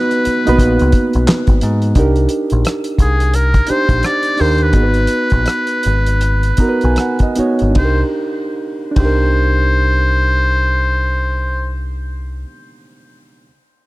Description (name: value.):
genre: R&B, neo-soul.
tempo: 75-88 BPM.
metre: 4/4.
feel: swing 60% on 16ths.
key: unclear.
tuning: A4 = 440 Hz.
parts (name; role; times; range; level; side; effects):
trumpet with metal mute; melody; 0.0-11.7 s; Ab4 to D5; -19 LUFS; left 1 dB; tape echo.
reed electric piano; accompaniment; 0.0-13.5 s; Bb3 to Bb5; -18 LUFS; right 2 dB; none.
cloth-damped thuddy drum kit; drums; 0.1-9.2 s; handclaps, hi-hat, kick drum, ride cymbal, rim click, snare drum; -15 LUFS; equal; none.
deep dub picked electric bass; bass; 0.3-12.4 s; Ab1 to Ab2; -15 LUFS; equal; none.
room: small room reverb.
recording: none.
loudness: -12 LUFS.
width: side -19 dB against mid.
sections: 0.0-2.0 A section; 2.0-7.8 B section; 7.8-11.0 C section.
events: slowing down 2.0-7.8; reed electric piano fill 6.2-7.8.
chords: 0.0 Abm9; 2.0 Cm9; 4.7 Abm9; 7.8 Cm9.